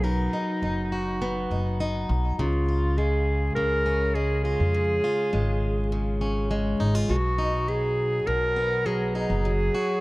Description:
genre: folktronica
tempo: 102 BPM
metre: 4/4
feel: straight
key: Db mixolydian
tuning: A4 = 440 Hz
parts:
  - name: warm clarinet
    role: melody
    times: 0.0-10.0 s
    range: Eb4 to Bb4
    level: -27 LUFS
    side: equal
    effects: vintage 12-bit sampler grit, tape echo
  - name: picked plugged-in swing-style acoustic guitar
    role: arpeggios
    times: 0.0-10.0 s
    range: Cb3 to Bb4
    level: -28 LUFS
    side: equal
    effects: tape echo
  - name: upright bass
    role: bass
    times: 0.0-9.7 s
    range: Gb1 to F2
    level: -26 LUFS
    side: equal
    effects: none
room: light reverb, small room ambience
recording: dark, warm production, vinyl crackle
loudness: -23 LUFS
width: side -20 dB against mid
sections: 0.0-2.4 A section; 2.4-10.0 B section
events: none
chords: 0.0 Cbmaj7; 2.4 Db; 7.1 Cb; 9.4 Gbsus2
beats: | 0.04 0.63 1.21 1.80 | 2.39 2.98 3.57 4.16 | 4.74 5.33 5.92 6.51 | 7.10 7.68 8.27 8.86 | 9.45

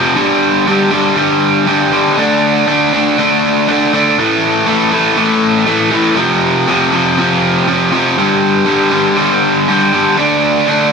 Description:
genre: rock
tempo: 120 BPM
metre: 4/4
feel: straight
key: unclear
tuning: A4 = 441 Hz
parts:
  - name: biting overdriven guitar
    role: solo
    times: 0.0-10.9 s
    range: F2 to D4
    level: -10 LUFS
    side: equal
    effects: none
room: light reverb, digital ambience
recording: none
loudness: -10 LUFS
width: side -5 dB against mid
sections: 0.0-10.9 A section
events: none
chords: 0.2 G5; 2.2 D5; 4.2 A5; 6.2 F5; 8.2 G5; 10.2 D5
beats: | 0.18 0.68 1.18 1.68 | 2.18 2.68 3.18 3.68 | 4.18 4.68 5.18 5.68 | 6.18 6.68 7.18 7.68 | 8.18 8.68 9.18 9.68 | 10.18 10.68

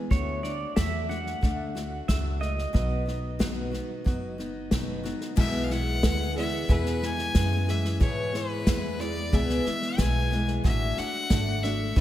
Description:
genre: honky-tonk and classic country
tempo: 91 BPM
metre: 4/4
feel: straight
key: E mixolydian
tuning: A4 = 439 Hz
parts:
  - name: picked steel-string acoustic guitar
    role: accompaniment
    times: 0.0-12.0 s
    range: E2 to G#4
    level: -31 LUFS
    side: left 2 dB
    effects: none
  - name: pedal steel guitar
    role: second line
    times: 0.1-5.0 s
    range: C#5 to F#5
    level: -36 LUFS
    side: right 3 dB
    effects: analog chorus, ping-pong delay
  - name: upright bass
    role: bass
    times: 0.1-12.0 s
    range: F#1 to G#2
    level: -30 LUFS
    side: equal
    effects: none
  - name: unplugged drum kit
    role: drums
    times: 0.1-12.0 s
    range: crash cymbal, hi-hat, kick drum, snare drum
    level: -28 LUFS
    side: equal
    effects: none
  - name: clear fiddle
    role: melody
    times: 5.4-12.0 s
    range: B4 to G#5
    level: -31 LUFS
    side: left 2 dB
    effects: ping-pong delay
  - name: dark upright piano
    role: accompaniment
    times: 6.0-12.0 s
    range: D4 to D5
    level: -39 LUFS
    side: right 7 dB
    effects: none
room: moderate lush hall reverb, RT60 2.2 s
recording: dreamy mix soaked in reverb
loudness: -24 LUFS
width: side -13 dB against mid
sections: 0.0-5.4 A section; 5.4-12.0 B section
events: pedal steel guitar solo 0.0-5.4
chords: 0.1 D; 2.7 B; 5.4 E; 10.6 D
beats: | 0.11 0.77 1.43 2.09 | 2.75 3.40 4.06 4.72 | 5.38 6.04 6.69 7.35 | 8.01 8.67 9.33 9.98 | 10.64 11.30 11.96

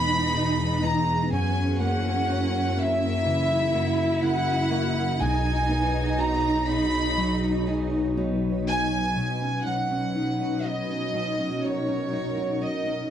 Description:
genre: pop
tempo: 61 BPM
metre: 4/4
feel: straight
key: B major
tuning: A4 = 440 Hz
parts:
  - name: warm studio violin section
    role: melody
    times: 0.0-13.1 s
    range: C#5 to B5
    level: -27 LUFS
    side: equal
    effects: slapback echo
  - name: dark symphonic cello section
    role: second line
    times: 0.0-9.2 s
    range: B3 to E4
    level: -29 LUFS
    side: right 4 dB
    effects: none
  - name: barky tine electric piano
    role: accompaniment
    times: 0.0-13.1 s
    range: B1 to F#4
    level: -27 LUFS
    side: left 2 dB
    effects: ensemble chorus
  - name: granular cloud pad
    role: sustained chords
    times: 0.0-13.1 s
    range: E2 to C#5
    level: -31 LUFS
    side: left 1 dB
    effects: built-in reverb
  - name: fingerpicked steel-string acoustic guitar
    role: arpeggios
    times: 0.0-13.1 s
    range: F#2 to G#4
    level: -34 LUFS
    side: right 4 dB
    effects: none
room: light reverb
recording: dry, close 1970s-style studio recording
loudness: -22 LUFS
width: side -9 dB against mid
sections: 0.0-9.2 A section; 9.2-13.1 B section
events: none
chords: 0.0 E; 1.3 F#7; 5.2 B6; 9.2 Badd9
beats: 0.35 | 1.32 2.29 3.26 4.23 | 5.20 6.18 7.17 8.17 | 9.17 10.15 11.14 12.13

